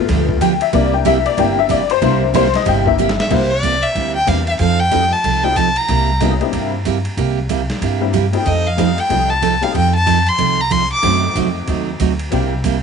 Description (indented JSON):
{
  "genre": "country, western swing",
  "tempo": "186 BPM",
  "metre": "4/4",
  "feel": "swing 62% on 8ths",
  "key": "C mixolydian",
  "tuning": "A4 = 440 Hz",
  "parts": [
    { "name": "honky-tonk upright piano", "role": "accompaniment", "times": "0.0-12.5 s", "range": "D#3 to G5", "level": "-18 LUFS", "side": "left 14 dB", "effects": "none" },
    { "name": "picked steel-string acoustic guitar", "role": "accompaniment", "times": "0.1-12.8 s", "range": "C3 to A4", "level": "-19 LUFS", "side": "right 14 dB", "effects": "none" },
    { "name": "upright bass", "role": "bass", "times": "0.1-12.8 s", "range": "G1 to G2", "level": "-20 LUFS", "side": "equal", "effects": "none" },
    { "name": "boom bap sampler-style drum kit", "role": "drums", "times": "0.1-12.7 s", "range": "crash cymbal, hi-hat, kick drum, ride cymbal, snare drum", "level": "-25 LUFS", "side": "equal", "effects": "none" },
    { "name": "clear fiddle", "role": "melody", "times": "3.2-6.2, 8.4-11.3 s", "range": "C5 to D6", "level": "-17 LUFS", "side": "left 1 dB", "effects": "tape echo" }
  ],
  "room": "light reverb, small room ambience",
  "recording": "1960s-style stereo with parts hard left and right, nothing above 10.6 kHz",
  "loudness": "-13 LUFS",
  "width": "side -6 dB against mid",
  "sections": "0.0-3.3 A section; 3.3-12.8 B section",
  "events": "honky-tonk piano solo 0.0-3.3; drum fill 3.0-3.3",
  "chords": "0.0 G9; 0.7 C9; 4.6 F9; 5.9 C9; 8.5 F9; 11.0 F#dim7; 12.3 C9",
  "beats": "0.09 0.41 | 0.73 1.05 1.38 1.70 | 2.02 2.34 2.66 2.99 | 3.31 3.63 3.95 4.28 | 4.60 4.92 5.24 5.56 | 5.89 6.21 6.53 6.85 | 7.17 7.50 7.82 8.14 | 8.46 8.78 9.11 9.43 | 9.75 10.07 10.39 10.71 | 11.03 11.36 11.68 12.00 | 12.32 12.64"
}